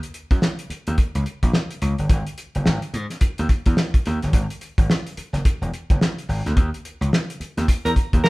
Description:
funk; 107 BPM; 4/4; swing 60% on 16ths; A4 = 440 Hz
cloth-damped thuddy drum kit; drums; 0.0-8.3 s; hi-hat, kick drum, snare drum; -20 LUFS; equal
gritty slap bass; bass; 0.3-8.2 s; Fb1 to Ab2; -24 LUFS; equal; overdrive
growling tenor saxophone; second line; 7.8-8.3 s; Bb4; -21 LUFS; right 2 dB
light reverb; band playing live in one room; -19 LUFS; side -22 dB against mid
0.0-8.3 A section
0.0 Ebm7; 2.1 Ab5; 6.6 N.C.

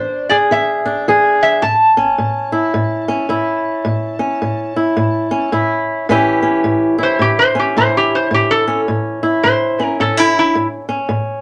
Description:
acoustic country blues, solo or duo; 108 BPM; 4/4; swing 62% on 8ths; A mixolydian; A4 = 440 Hz
metal-body resonator slide guitar; melody; 0.0-10.7 s; E4 to A5; -17 LUFS; equal
fingerpicked swing-style acoustic guitar; accompaniment; 0.0-11.4 s; A2 to G#4; -18 LUFS; equal
moderate club reverb, RT60 0.7 s; -15 LUFS; mono
0.0-6.1 A section; 6.1-11.4 B section
resonator guitar played with a steel bar solo 6.1-11.4
0.0 E7; 1.6 A; 6.1 A7

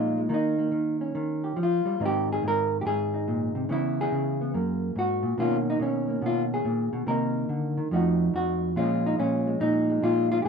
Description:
solo jazz; 142 BPM; 4/4; swing 68% on 8ths; Bb minor; A4 = 437 Hz
hollow-body jazz guitar; solo; 0.0-10.5 s; F2 to Bb4; -24 LUFS; equal
light reverb; minimal, uncompressed stereo recording; -24 LUFS; side -6 dB against mid
0.0-10.5 A section
0.3 Eb7; 2.0 Abadd9; 3.7 Dbm7; 4.5 Gb; 5.4 Bmaj9; 7.1 Cm9; 7.9 F7b9; 8.8 Bbm7

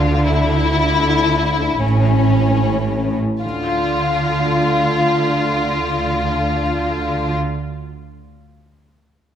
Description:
cinematic, suspense film score; 76 BPM; 4/4; straight; D minor; A4 = 437 Hz
rich chamber violin section; melody; 0.0-7.4 s; C#4 to F4; -18 LUFS; left 3 dB
rich chamber cello section; bass; 0.0-7.4 s; A2 to D3; -21 LUFS; right 2 dB
warm chamber double bass section; bass; 0.0-7.4 s; A1 to D2; -22 LUFS; right 3 dB
wet scoring stage reverb, RT60 1.8 s; -15 LUFS; side -9 dB against mid
0.0-3.4 A section; 3.4-6.6 B section
0.3 Dsus2; 1.8 A; 3.4 Dm

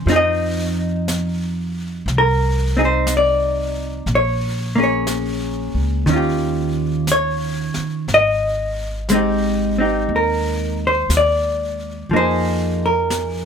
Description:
jazz ballad; 60 BPM; 4/4; swing 69% on 8ths; A4 = 437 Hz
hollow-body jazz guitar; accompaniment; 0.0-13.4 s; Eb3 to Eb5; -18 LUFS; equal
upright bass; bass; 0.0-13.4 s; Ab1 to F2; -23 LUFS; equal
jazz brush drum kit; drums; 0.1-13.4 s; brushed snare drum, hi-hat, snare drum; -31 LUFS; left 1 dB
little or no reverb; close, detailed microphones; -17 LUFS; side -7 dB against mid
0.0-13.4 A section
0.1 F7(no3); 4.1 Bbm7; 6.1 Eb9; 8.1 Abmaj7; 12.1 Fm7

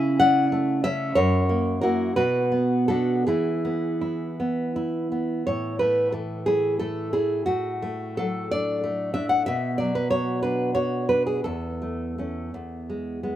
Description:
romantic piece for solo classical guitar; 52-65 BPM (dotted quarters); 6/8; rubato; A major; A4 = 440 Hz
nylon-string guitar; solo; 0.0-13.4 s; E2 to G#5; -22 LUFS; equal; slapback echo
light reverb; recorded outdoors, with no room sound; -22 LUFS; side -12 dB against mid
0.0-5.5 A section; 5.5-13.4 B section
0.0 A/C#; 1.2 F#7; 2.1 Bm; 3.3 E; 5.5 A5; 7.5 D/A; 9.5 Bm; 11.5 A/E; 12.5 E

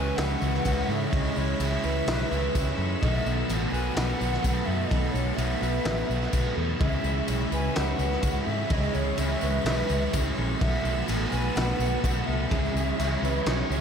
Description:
rock, shoegaze and dream pop; 126 BPM; 4/4; straight; C# minor; A4 = 438 Hz
breathy mellow silver concert flute; melody; 0.0-13.8 s; C#5 to G#5; -34 LUFS; equal; tape echo
lush unison pad; sustained chords; 0.0-13.8 s; B4 to E6; -39 LUFS; equal; chorus, phaser
electric guitar through a small old amp; arpeggios; 0.0-13.8 s; G#4 to C#5; -35 LUFS; right 1 dB; analog chorus, tape echo
overdriven electric guitar; riff; 0.0-13.8 s; B2 to F#4; -32 LUFS; right 10 dB; reverse reverb
thick fuzz guitar; riff; 0.0-13.8 s; B2 to C#4; -33 LUFS; left 12 dB; distortion, wide subtle chorus
vintage muted fingered electric bass; bass; 0.0-13.8 s; A1 to G#2; -29 LUFS; equal
loose indie drum kit; drums; 0.2-13.6 s; crash cymbal, kick drum, snare drum; -31 LUFS; equal
tambourine; percussion; 0.2-13.8 s; -45 LUFS; left 15 dB
moderate plate reverb, RT60 1.1 s, small room ambience; dreamy mix soaked in reverb; -24 LUFS; side -7 dB against mid
0.0-13.8 A section
0.0 C#m7; 3.0 B7sus4; 6.8 C#m7; 10.6 B7sus4; 12.5 C#m

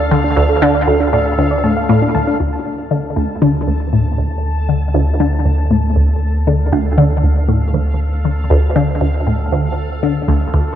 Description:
ambient, sequencer-driven space music; 118 BPM; 4/4; straight; D minor; A4 = 439 Hz
soft round pluck; arpeggios; 0.0-2.3 s; D4 to A5; -18 LUFS; moving between left 3 dB and right 3 dB; chorus, auto-pan, tape echo
warm sub bass; bass; 0.0-10.8 s; D2; -18 LUFS; equal
bubbling stepped-filter texture; texture; 0.0-10.8 s; A4 to A5; -25 LUFS; equal; chorus, built-in reverb
resonant blip pluck; riff; 0.1-10.7 s; D2 to D3; -15 LUFS; equal; phaser, tape echo
moderate plate reverb, RT60 3.5 s; worn, warbling old tape, cassette tape, warbly pitch drift; -13 LUFS; side -10 dB against mid
0.0-2.4 A section; 2.4-10.8 B section
fade-in on synth texture 2.4-10.8
0.0 Dm

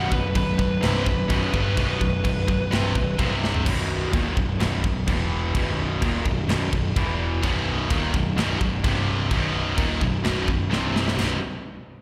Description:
heavy metal; 128 BPM; 4/4; straight; A4 = 440 Hz
bluesy overdriven lead guitar; melody; 0.0-3.2 s; B4 to F#5; -32 LUFS; equal; distortion, slapback echo, delay
crunchy overdriven guitar; riff; 0.0-11.4 s; B1 to G3; -34 LUFS; equal; slapback echo
heavy high-gain guitar; riff; 0.0-11.4 s; B1 to G3; -30 LUFS; equal; distortion, slapback echo
high-gain distorted guitar; riff; 0.0-3.7, 7.4-11.4 s; B1 to G3; -31 LUFS; equal; distortion, slapback echo
fuzz picked electric bass; bass; 0.0-11.4 s; B0 to G1; -28 LUFS; equal; overdrive
tight metal drum kit; drums; 0.1-11.3 s; crash cymbal, kick drum, snare drum, toms; -29 LUFS; equal
little or no reverb; live gig heard through the venue's PA, recital hall reverb; -23 LUFS; mono
0.0-3.7 A section; 3.7-11.2 B section
drum fill 3.4, 10.7-11.2
0.0 B5; 3.2 C5; 3.7 B; 5.1 E5; 5.5 B; 7.0 E5; 7.4 B; 8.8 C5; 9.3 B; 10.7 C5; 11.2 B5

